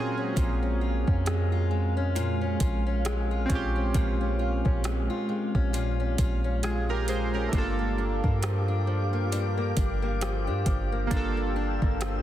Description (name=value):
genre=contemporary R&B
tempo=67 BPM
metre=4/4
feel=swing 58% on 16ths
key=unclear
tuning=A4 = 442 Hz
part: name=warm analog keys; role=accompaniment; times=0.0-12.2 s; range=A3 to C5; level=-33 LUFS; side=right 4 dB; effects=chorus
part: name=glassy FM pad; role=sustained chords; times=0.0-12.2 s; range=Ab3 to E6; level=-34 LUFS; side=left 1 dB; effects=ensemble chorus, built-in reverb, tremolo
part: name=fingerpicked old ladder-braced acoustic guitar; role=arpeggios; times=0.0-12.2 s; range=G2 to F4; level=-34 LUFS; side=left 6 dB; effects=tape echo
part: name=soft 808-style bass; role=bass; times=0.4-12.2 s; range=G1 to G2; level=-28 LUFS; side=equal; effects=none
part: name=smooth R&B drum kit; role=drums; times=0.4-12.2 s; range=hi-hat, kick drum, rim click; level=-29 LUFS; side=equal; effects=none
room=digital ambience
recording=dense, heavily limited modern master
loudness=-25 LUFS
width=side -12 dB against mid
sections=0.0-12.2 A section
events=break 0.0-0.4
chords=0.0 Bbm7; 7.5 Gm7